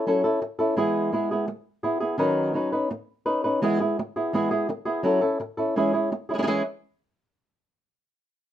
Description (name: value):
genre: flamenco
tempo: 168 BPM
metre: 4/4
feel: straight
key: E major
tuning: A4 = 440 Hz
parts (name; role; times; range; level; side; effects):
- flamenco guitar; solo; 0.0-6.6 s; D#3 to B4; -22 LUFS; equal; none
room: light reverb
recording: minimal, uncompressed stereo recording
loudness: -23 LUFS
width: side -11 dB against mid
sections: 0.0-6.5 A section; 6.5-7.9 B section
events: none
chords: 0.0 F#m7; 0.8 E; 2.2 Badd9/D#; 3.6 E; 5.0 F#m7; 5.8 E6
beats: 0.06 0.41 | 0.77 1.12 1.48 1.83 | 2.19 2.55 2.90 3.26 | 3.62 3.97 4.33 4.68 | 5.04 5.40 5.76 6.11 | 6.47